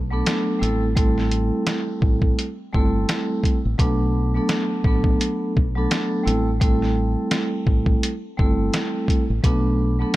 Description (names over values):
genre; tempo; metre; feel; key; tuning
hip hop, boom-bap hip-hop; 85 BPM; 4/4; swing 59% on 16ths; A dorian; A4 = 440 Hz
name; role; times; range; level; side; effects
deep dub fingered electric bass; bass; 0.0-10.0 s; G1 to B1; -23 LUFS; equal; none
vibraphone with soft mallets; accompaniment; 0.1-10.2 s; F#3 to A4; -23 LUFS; right 1 dB; cassette tape, high-pass filter, low-pass filter
lo-fi sampler-style drum kit; drums; 0.3-10.2 s; hi-hat, kick drum, snare drum; -21 LUFS; equal; none
room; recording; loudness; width
little or no reverb; none; -18 LUFS; side -16 dB against mid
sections
0.0-10.2 A section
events
none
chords
0.0 Bm7; 0.6 Am7; 3.8 Bm7; 6.3 Am7; 9.4 Bm7